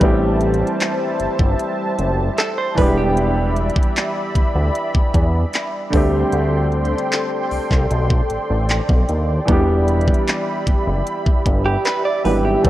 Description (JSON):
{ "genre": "contemporary R&B", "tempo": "76 BPM", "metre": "4/4", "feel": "straight", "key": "E minor", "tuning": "A4 = 440 Hz", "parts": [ { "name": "clear baby grand piano", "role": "accompaniment", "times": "0.0-12.7 s", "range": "D3 to B4", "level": "-22 LUFS", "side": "equal", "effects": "none" }, { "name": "warm analog pad", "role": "sustained chords", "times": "0.0-12.7 s", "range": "G3 to C6", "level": "-24 LUFS", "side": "right 1 dB", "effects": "chorus" }, { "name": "direct-recorded clean electric guitar", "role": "arpeggios", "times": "0.0-4.1, 11.7-12.7 s", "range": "G4 to D5", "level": "-23 LUFS", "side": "right 3 dB", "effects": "lush chorus" }, { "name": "fat analog bass", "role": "bass", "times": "0.0-12.7 s", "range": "E1 to E2", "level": "-19 LUFS", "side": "equal", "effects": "none" }, { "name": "trap drum kit", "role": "drums", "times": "0.0-12.7 s", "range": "handclaps, hi-hat, kick drum", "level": "-18 LUFS", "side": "equal", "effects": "none" } ], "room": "digital ambience", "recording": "worn, warbling old tape, cassette tape, warbly pitch drift", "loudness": "-16 LUFS", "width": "side -14 dB against mid", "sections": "0.0-12.7 A section", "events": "none", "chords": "0.0 Am7; 2.8 Em7; 5.9 D7sus4; 9.5 Em7" }